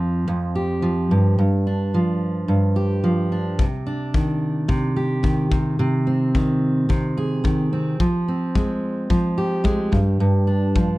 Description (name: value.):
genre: acoustic pop.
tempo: 109 BPM.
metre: 4/4.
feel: straight.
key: unclear.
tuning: A4 = 440 Hz.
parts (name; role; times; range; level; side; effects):
fingerpicked steel-string acoustic guitar; accompaniment; 0.0-11.0 s; F2 to Ab4; -19 LUFS; equal; none.
kick drum; drums; 3.6-10.9 s; none; -22 LUFS; left 2 dB; none.
room: little or no reverb.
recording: none.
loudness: -18 LUFS.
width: side -19 dB against mid.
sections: 0.0-11.0 A section.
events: none.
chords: 0.0 Fsus2; 1.1 G5; 3.6 Cmadd9; 5.5 Ab/C; 8.0 Fmadd9; 9.9 G5.